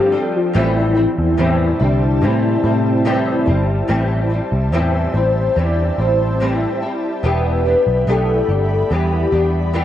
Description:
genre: indie pop, bedroom pop.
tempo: 72 BPM.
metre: 4/4.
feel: straight.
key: A minor.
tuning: A4 = 440 Hz.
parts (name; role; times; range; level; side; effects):
soft octave-layered synth lead; melody; 0.0-9.8 s; C4 to D5; -19 LUFS; left 1 dB; phaser, analog chorus, tape echo.
flamenco guitar; accompaniment; 0.0-9.8 s; G2 to A4; -20 LUFS; left 1 dB; ensemble chorus, vibrato effect.
ethereal airy pad; sustained chords; 0.0-9.8 s; F3 to B5; -26 LUFS; right 1 dB; ensemble chorus, built-in reverb.
vintage muted picked electric bass; bass; 0.6-9.8 s; E1 to A2; -18 LUFS; equal; none.
room: light reverb, digital ambience.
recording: worn, warbling old tape, cassette tape, warbly pitch drift.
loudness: -14 LUFS.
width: side -11 dB against mid.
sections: 0.0-3.9 A section; 3.9-9.8 B section.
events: none.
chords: 0.0 G9sus4; 0.6 Am7; 7.2 Em7.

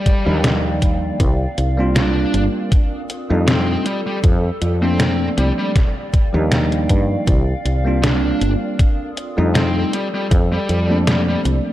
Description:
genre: vaporwave.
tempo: 79 BPM.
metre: 4/4.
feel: swing 54% on 16ths.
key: Bb major.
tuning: A4 = 440 Hz.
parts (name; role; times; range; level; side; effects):
bluesy overdriven lead guitar; melody; 0.0-11.4 s; G3 to D4; -24 LUFS; equal; distortion, tape echo.
warbly tape-like pad; sustained chords; 0.0-11.7 s; Eb3 to Eb6; -28 LUFS; right 1 dB; chorus, built-in reverb.
detuned 8-bit digital drum machine; drums; 0.1-11.6 s; hi-hat, snare drum; -20 LUFS; equal; studio reverb, gated reverb.
electronic kick drum; drums; 0.1-10.5 s; none; -15 LUFS; equal; studio reverb.
bell-like tine electric piano; accompaniment; 0.3-11.7 s; F3 to F4; -22 LUFS; equal; lush chorus, analog delay.
woody fretless electric bass; bass; 0.3-11.6 s; G1 to G2; -18 LUFS; equal; none.
room: light reverb, digital ambience.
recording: none.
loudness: -15 LUFS.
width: side -14 dB against mid.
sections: 0.0-11.7 A section.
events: none.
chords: 0.0 Ebmaj9; 1.2 C9sus4; 2.7 F13; 3.9 Bbmaj9/F; 5.8 Ebmaj9; 7.3 C9sus4; 8.8 F13; 9.9 Bbmaj9/F.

